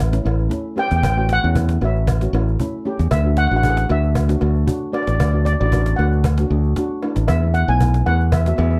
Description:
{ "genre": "calypso", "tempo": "115 BPM", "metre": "4/4", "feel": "swing 54% on 16ths", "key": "A major", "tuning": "A4 = 440 Hz", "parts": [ { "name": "steel pan", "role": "melody", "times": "0.0-8.8 s", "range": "D5 to G#5", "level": "-25 LUFS", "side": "equal", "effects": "none" }, { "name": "modern bright fingered electric bass", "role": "bass", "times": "0.0-8.8 s", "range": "A1 to E2", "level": "-20 LUFS", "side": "equal", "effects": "none" }, { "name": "steel pan", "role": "accompaniment", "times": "0.1-8.8 s", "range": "A3 to G#4", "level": "-27 LUFS", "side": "equal", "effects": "none" }, { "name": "cajon", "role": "drums", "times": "0.1-8.8 s", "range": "none", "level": "-26 LUFS", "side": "equal", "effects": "none" }, { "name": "cowbell", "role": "percussion", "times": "0.3-8.7 s", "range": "none", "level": "-33 LUFS", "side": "equal", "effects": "none" } ], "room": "light reverb", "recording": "dark, warm production", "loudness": "-18 LUFS", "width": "mono", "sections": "0.0-8.8 A section", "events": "none", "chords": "0.0 A7; 3.1 Dadd9; 7.3 Esus4" }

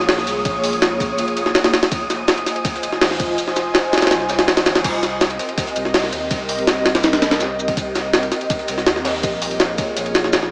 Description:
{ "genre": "drum and bass, jungle", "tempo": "164 BPM", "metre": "4/4", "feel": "straight", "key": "C phrygian", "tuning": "A4 = 440 Hz", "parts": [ { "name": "saturated sub bass", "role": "bass", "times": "0.0-10.5 s", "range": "F1 to Eb2", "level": "-37 LUFS", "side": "equal", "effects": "tube saturation" }, { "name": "jungle sampler-style drum kit", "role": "drums", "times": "0.0-10.5 s", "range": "crash cymbal, hi-hat, kick drum, ride cymbal, snare drum", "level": "-20 LUFS", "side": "equal", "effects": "studio reverb" }, { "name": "wind-like tuned noise texture", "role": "texture", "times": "0.0-4.9 s", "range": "Eb6", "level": "-30 LUFS", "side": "equal", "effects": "built-in reverb" }, { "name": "crunchy breakbeat drum kit", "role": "drums", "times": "0.1-10.4 s", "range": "hi-hat, shaker, snare drum", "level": "-30 LUFS", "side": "equal", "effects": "high-pass filter on hats, studio reverb, high-pass filter on snare, high-pass filter on perc, high-pass filter on room" } ], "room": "light reverb, studio ambience", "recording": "small speaker sound", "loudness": "-19 LUFS", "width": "mono", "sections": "0.0-4.8 A section; 4.8-10.5 A section", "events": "drop 0.0-4.8, 4.8-10.5; kick drops out 4.1-4.8", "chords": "0.0 Bbm7; 1.2 Fm7; 4.8 Cm7; 9.2 Bbm7" }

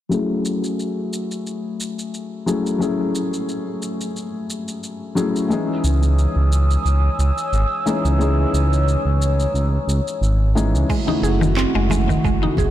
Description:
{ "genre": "organic downtempo", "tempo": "89 BPM", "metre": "4/4", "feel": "swing 55% on 16ths", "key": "unclear", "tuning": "A4 = 440 Hz", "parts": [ { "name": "felt-muted upright piano", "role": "accompaniment", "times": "0.1-10.9 s", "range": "E3 to G#4", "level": "-23 LUFS", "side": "left 2 dB", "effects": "sidechain pumping, low-pass filter, ping-pong delay" }, { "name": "organic electronic drum kit", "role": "drums", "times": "0.1-12.7 s", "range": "crash cymbal, handclaps, shaker", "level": "-32 LUFS", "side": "equal", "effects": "overdrive, small room ambience" }, { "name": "warm analog pad", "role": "sustained chords", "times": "5.5-12.7 s", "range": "C#3 to E6", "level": "-24 LUFS", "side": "equal", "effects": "chorus, sidechain pumping" }, { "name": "smooth synth bass", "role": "bass", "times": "5.8-12.7 s", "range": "F#1 to C#2", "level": "-17 LUFS", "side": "right 1 dB", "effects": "sidechain pumping" }, { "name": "mallet-like synth pluck", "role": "arpeggios", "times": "10.9-12.7 s", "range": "D#3 to G#4", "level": "-21 LUFS", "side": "right 1 dB", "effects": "chorus, ping-pong delay" }, { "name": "electronic kick drum", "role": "drums", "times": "10.9-12.7 s", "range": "none", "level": "-23 LUFS", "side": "equal", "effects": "overdrive, small room ambience" }, { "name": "congas and bongos", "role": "percussion", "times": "11.1-12.7 s", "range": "none", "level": "-27 LUFS", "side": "left 5 dB", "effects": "none" } ], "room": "light reverb", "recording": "blown-out, overdriven recording, overdrive", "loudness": "-18 LUFS", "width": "side -12 dB against mid", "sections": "0.1-10.9 A section; 10.9-12.7 B section", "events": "filter sweep on felt piano 0.1-10.9", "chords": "0.1 F#m7; 5.5 C#madd9; 10.9 F#m7" }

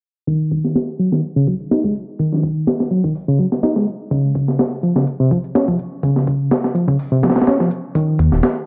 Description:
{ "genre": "breakbeat, breaks", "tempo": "125 BPM", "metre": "4/4", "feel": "swing 54% on 16ths", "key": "unclear", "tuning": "A4 = 440 Hz", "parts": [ { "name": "bright reed electric piano", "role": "riff", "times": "0.3-8.4 s", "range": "C3 to Eb4", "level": "-19 LUFS", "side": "equal", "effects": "fast tremolo, overdrive, low-pass filter, tape echo" }, { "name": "breakbeat sampler-style drum kit", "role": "drums", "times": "0.3-8.6 s", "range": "hi-hat, kick drum, snare drum", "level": "-21 LUFS", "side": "equal", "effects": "high-pass filter on hats, high-pass filter on kick, high-pass filter on snare, high-pass filter on room" }, { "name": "dark detuned saw bass", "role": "bass", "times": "8.2-8.4 s", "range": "Eb1 to Eb2", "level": "-16 LUFS", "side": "equal", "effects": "none" } ], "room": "light reverb", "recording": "dry, gritty hardware recording, low-pass filter", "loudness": "-18 LUFS", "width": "mono", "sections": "0.3-8.7 A section", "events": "filter sweep on reed electric piano 0.3-8.7; filter sweep 0.3-8.7", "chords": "0.3 N.C.; 4.1 Db; 8.0 N.C." }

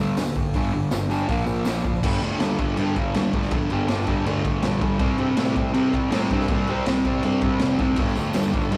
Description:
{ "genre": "garage rock duo or trio", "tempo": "162 BPM", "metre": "4/4", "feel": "straight", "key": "G minor", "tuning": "A4 = 440 Hz", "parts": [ { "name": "fuzz guitar", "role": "riff", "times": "0.0-8.8 s", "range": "G2 to C4", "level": "-25 LUFS", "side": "equal", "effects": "distortion" }, { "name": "fuzz picked electric bass", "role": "bass", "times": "0.0-8.8 s", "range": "F1 to C3", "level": "-32 LUFS", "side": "equal", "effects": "overdrive" }, { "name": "raw garage drum kit", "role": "drums", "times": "0.2-8.8 s", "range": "crash cymbal, hi-hat, kick drum, snare drum", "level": "-28 LUFS", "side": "equal", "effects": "none" }, { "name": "tambourine", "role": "percussion", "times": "0.2-2.0, 8.0-8.7 s", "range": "none", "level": "-49 LUFS", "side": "equal", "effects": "none" } ], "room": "light reverb", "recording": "rough rehearsal-room recording", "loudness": "-23 LUFS", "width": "mono", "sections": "0.0-2.0 A section; 2.0-8.8 B section", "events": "none", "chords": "0.0 G5; 1.3 Bb5; 2.0 Gm; 5.0 C5; 8.0 G5" }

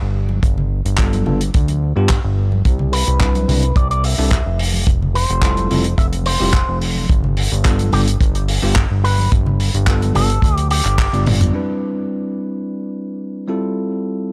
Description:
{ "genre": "nu-disco, nu disco", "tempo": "108 BPM", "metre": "4/4", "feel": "straight", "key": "G mixolydian", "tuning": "A4 = 440 Hz", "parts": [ { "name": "fat analog bass", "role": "bass", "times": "0.0-11.5 s", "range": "F1 to G2", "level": "-20 LUFS", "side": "equal", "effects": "none" }, { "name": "congas", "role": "percussion", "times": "0.3-11.5 s", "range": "none", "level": "-28 LUFS", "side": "equal", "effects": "none" }, { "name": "damped 70s drum kit", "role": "drums", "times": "0.4-11.5 s", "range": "handclaps, hi-hat, toms", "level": "-25 LUFS", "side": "equal", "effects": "low-pass filter on hats, low-pass filter on toms, low-pass filter on snare, low-pass filter on room" }, { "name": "kick drum", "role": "drums", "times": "0.4-11.1 s", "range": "none", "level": "-18 LUFS", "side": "equal", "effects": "none" }, { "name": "bell-like tine electric piano", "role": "accompaniment", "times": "1.0-14.3 s", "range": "G3 to D5", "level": "-25 LUFS", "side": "equal", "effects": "vintage 12-bit sampler grit, low-pass filter" }, { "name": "electric guitar with an envelope filter", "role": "melody", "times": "2.9-11.2 s", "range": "G4 to E5", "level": "-25 LUFS", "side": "equal", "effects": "analog delay" } ], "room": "studio reverb", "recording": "dry, gritty hardware recording, cassette tape", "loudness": "-17 LUFS", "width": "mono", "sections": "0.0-11.5 A section; 11.5-14.3 B section", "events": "band accent 11.0; drum fill 11.1-11.5", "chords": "0.0 G9; 2.7 Cmaj9; 4.6 Fmaj7; 7.1 G9; 11.5 Cmaj9; 13.5 Fmaj7" }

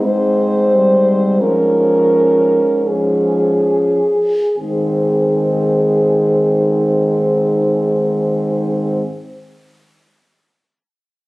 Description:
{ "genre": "classical, lyrical piece for horn quartet", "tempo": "34-45 BPM", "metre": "4/4", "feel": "rubato", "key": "Ab major", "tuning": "A4 = 440 Hz", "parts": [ { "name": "mellow French horn", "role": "melody", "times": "0.0-9.0 s", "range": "Ab4 to C5", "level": "-15 LUFS", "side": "equal", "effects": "none" }, { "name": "warm French horn", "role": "second line", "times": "0.0-9.0 s", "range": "C4 to Db4", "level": "-21 LUFS", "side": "right 1 dB", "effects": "none" }, { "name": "dark French horn", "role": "accompaniment", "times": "0.0-9.0 s", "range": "Eb3 to Ab3", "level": "-20 LUFS", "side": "equal", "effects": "none" }, { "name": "mellow French horn", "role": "bass", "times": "0.0-9.0 s", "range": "Ab2", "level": "-21 LUFS", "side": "equal", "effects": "none" } ], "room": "moderate recital hall reverb, RT60 1.4 s", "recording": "recorded on a phone in the room, club reverb", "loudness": "-12 LUFS", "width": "side -20 dB against mid", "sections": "0.0-4.6 A section; 4.6-11.3 B section", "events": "slowing down 0.0-4.6", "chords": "0.0 Ab; 1.4 Db/Ab; 4.6 Ab" }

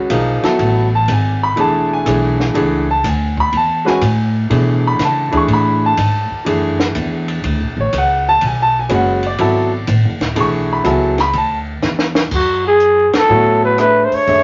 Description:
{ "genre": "modal jazz", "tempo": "123 BPM", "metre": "4/4", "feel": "swing 68% on 8ths", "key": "F# minor", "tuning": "A4 = 440 Hz", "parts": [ { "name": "warm grand piano", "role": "accompaniment", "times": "0.0-14.4 s", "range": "E3 to C#6", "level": "-18 LUFS", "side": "equal", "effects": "none" }, { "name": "upright bass", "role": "bass", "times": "0.1-14.4 s", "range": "D1 to C#3", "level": "-21 LUFS", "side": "equal", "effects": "none" }, { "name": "compact cocktail drum kit", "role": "drums", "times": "0.1-14.4 s", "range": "crash cymbal, hi-hat, kick drum, ride cymbal, rim click, snare drum", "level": "-25 LUFS", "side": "equal", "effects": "none" }, { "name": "growling trumpet", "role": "melody", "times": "12.3-14.4 s", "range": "F#4 to C#5", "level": "-14 LUFS", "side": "equal", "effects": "none" } ], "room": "wet small room ambience, RT60 0.5 s", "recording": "vinyl crackle, nothing above 7.5 kHz", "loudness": "-15 LUFS", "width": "mono", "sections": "0.0-12.3 A section; 12.3-14.4 B section", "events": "drum fill 11.8-12.3; band accent 13.1", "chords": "0.0 F#m11; 4.5 Bm11; 12.3 F#m11" }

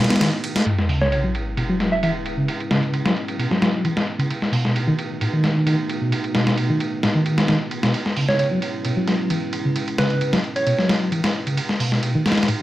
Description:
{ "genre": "breakbeat, breaks", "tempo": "132 BPM", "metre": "4/4", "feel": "straight", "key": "C# minor", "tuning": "A4 = 439 Hz", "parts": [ { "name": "dark analog pad", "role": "sustained chords", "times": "0.0-12.6 s", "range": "G#3 to B4", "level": "-29 LUFS", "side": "right 1 dB", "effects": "wide subtle chorus" }, { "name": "mellow reed electric piano", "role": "riff", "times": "0.0-12.5 s", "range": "A2 to B3", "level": "-22 LUFS", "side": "equal", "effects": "fast tremolo, tube saturation, low-pass filter, tape echo" }, { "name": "dusty soul sampler-style drum kit", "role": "drums", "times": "0.0-12.6 s", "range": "hi-hat, ride cymbal, snare drum", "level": "-22 LUFS", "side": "left 1 dB", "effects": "overdrive, low-pass filter on cymbals, low-pass filter on snare, low-pass filter on kick, low-pass filter on hats" }, { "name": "sub drop", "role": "sound effects", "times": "0.7-2.5 s", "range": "none", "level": "-25 LUFS", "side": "equal", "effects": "none" }, { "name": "soft struck synth lead", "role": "melody", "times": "1.0-2.1, 8.3-10.9 s", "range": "B4 to E5", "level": "-24 LUFS", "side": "right 2 dB", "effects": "chorus, AM radio sound, cassette tape, tape echo" } ], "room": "moderate small room reverb, RT60 0.5 s", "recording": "none", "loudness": "-18 LUFS", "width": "side -15 dB against mid", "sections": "0.7-12.6 A section", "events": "break 0.0-0.7; impact 0.7-2.5", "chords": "0.0 B7; 0.7 C#m7; 4.3 B7; 7.9 C#m7; 11.6 B7" }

